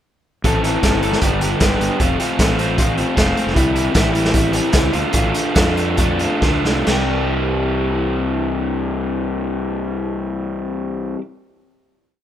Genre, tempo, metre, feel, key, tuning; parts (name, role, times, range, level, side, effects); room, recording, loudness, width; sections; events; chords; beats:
indie rock; 131-155 BPM; 4/4; straight; C major; A4 = 440 Hz
raw garage guitar; riff; 0.4-11.2 s; F2 to A4; -19 LUFS; left 1 dB; overdrive
fuzz fingered electric bass; bass; 0.4-11.1 s; F1 to F2; -23 LUFS; equal; overdrive
raw garage drum kit; drums; 0.4-7.0 s; hi-hat, kick drum, snare drum, splash cymbal; -19 LUFS; equal
studio reverb; rough home demo mix; -16 LUFS; side -10 dB against mid
0.4-6.9 pre-chorus; 6.9-10.5 final chord
slowing down 3.6-6.9; drum fill 6.4-6.9
0.4 Am; 1.2 G; 2.0 F; 3.6 C; 4.9 Dm; 6.9 C
| 0.44 0.83 1.22 1.61 | 2.00 2.39 2.78 3.17 | 3.56 3.95 4.34 4.74 | 5.15 5.56 5.99 6.42 | 6.87 7.33 7.78 8.24 | 8.69 9.15 9.60 10.05